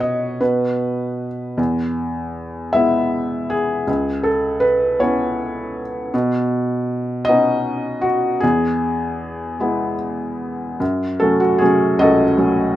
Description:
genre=classical, lyrical solo piano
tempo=52 BPM (dotted quarters)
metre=6/8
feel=rubato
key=E major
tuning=A4 = 440 Hz
part: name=felt-muted upright piano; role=solo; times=0.0-12.8 s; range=C#2 to E5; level=-17 LUFS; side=equal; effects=none
room=moderate studio reverb, RT60 0.6 s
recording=minimal, uncompressed stereo recording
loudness=-17 LUFS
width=side -13 dB against mid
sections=0.0-10.8 A section; 10.8-12.8 B section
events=none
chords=0.0 N.C.; 1.6 E; 3.9 C#m7; 6.1 Badd9; 8.4 E; 10.8 F#m

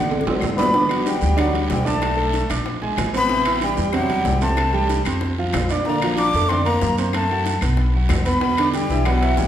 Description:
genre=Afro-Cuban jazz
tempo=188 BPM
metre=4/4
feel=straight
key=G major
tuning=A4 = 444 Hz
part: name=breathy mellow silver concert flute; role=melody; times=0.0-9.5 s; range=F#5 to D6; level=-23 LUFS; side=left 2 dB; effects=none
part: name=clear grand piano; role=accompaniment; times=0.0-9.5 s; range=B2 to D6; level=-23 LUFS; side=right 3 dB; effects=none
part: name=upright bass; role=bass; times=0.0-9.5 s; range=G1 to F#2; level=-22 LUFS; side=equal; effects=none
part: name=bongos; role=percussion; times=0.0-9.5 s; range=none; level=-30 LUFS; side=left 4 dB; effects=none
part: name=guiro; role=percussion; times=0.1-9.5 s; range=none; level=-34 LUFS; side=right 5 dB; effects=none
part: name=timbales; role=percussion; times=0.1-9.4 s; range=none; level=-29 LUFS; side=right 2 dB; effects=none
part: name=claves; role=percussion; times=0.4-9.2 s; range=none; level=-37 LUFS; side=left 5 dB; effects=none
part: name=clear trombone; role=second line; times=0.6-9.5 s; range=F#3 to D4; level=-27 LUFS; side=left 2 dB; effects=none
room=wet recital hall reverb, RT60 1.4 s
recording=recorded in a church or concert hall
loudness=-17 LUFS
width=side -10 dB against mid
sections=0.7-9.5 A section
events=drum fill 0.0-0.7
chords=0.0 D; 0.7 Gmaj7; 2.0 Bbmaj7; 2.7 Bb9; 3.3 Am9; 4.6 C5; 5.2 F5; 5.9 Bbmaj7; 7.1 F#dim; 7.8 B5; 8.4 Em9

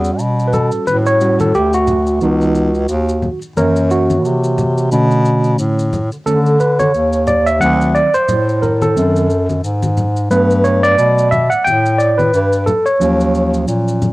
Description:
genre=hip hop, jazz-hop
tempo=89 BPM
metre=4/4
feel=swing 57% on 16ths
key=E dorian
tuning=A4 = 439 Hz
part: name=tine electric piano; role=accompaniment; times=0.0-14.1 s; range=D3 to G5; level=-14 LUFS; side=right 1 dB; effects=medium stereo tremolo, cassette tape
part: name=warm bass clarinet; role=bass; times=0.0-14.1 s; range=C#2 to D3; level=-16 LUFS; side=equal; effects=none
part: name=maracas and congas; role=percussion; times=0.0-14.1 s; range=none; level=-24 LUFS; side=left 2 dB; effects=none
room=small room ambience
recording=home recording on cassette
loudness=-12 LUFS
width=side -20 dB against mid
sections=0.0-14.1 A section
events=tine electric piano solo 0.0-14.1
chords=0.0 Em69 (rootless); 2.2 C#m9; 3.6 F#7; 4.9 Bm9; 7.6 D7b9; 10.3 Gmaj9; 13.0 D#m9

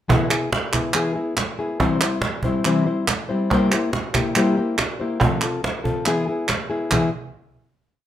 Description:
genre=flamenco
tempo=141 BPM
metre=4/4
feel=straight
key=unclear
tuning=A4 = 440 Hz
part: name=nylon-string guitar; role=accompaniment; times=0.1-7.1 s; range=C3 to C5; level=-21 LUFS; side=left 2 dB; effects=none
part: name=cajon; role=percussion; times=0.1-7.0 s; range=none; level=-24 LUFS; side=right 2 dB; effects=none
part: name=palmas hand claps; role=percussion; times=0.1-7.0 s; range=none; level=-23 LUFS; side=right 3 dB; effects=none
room=moderate large studio reverb, RT60 0.8 s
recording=minimal, uncompressed stereo recording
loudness=-19 LUFS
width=side -11 dB against mid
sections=0.1-6.9 groove; 6.9-8.1 final chord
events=none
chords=0.1 E; 1.8 C; 3.5 C7; 5.2 F; 6.1 E

